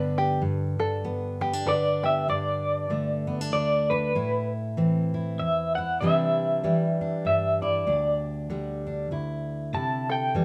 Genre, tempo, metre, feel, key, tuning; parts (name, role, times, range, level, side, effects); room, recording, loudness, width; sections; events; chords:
acoustic folk duo or small band; 97 BPM; 3/4; swing 60% on 8ths; G major; A4 = 440 Hz
fingerpicked steel-string acoustic guitar; accompaniment; 0.0-10.4 s; D2 to E4; -30 LUFS; equal
open-back banjo; arpeggios; 0.0-2.3, 10.1-10.4 s; G4 to B4; -31 LUFS; equal
electric guitar through a small old amp; melody; 1.7-10.4 s; B4 to A5; -28 LUFS; equal; tremolo
moderate studio reverb, RT60 0.7 s; -26 LUFS; mono
0.4-2.3 A section; 2.3-10.4 B section
0.4 G; 2.3 Gsus2; 4.1 Am; 6.0 Cadd9; 7.9 Dsus4; 9.1 Dsus2; 9.7 C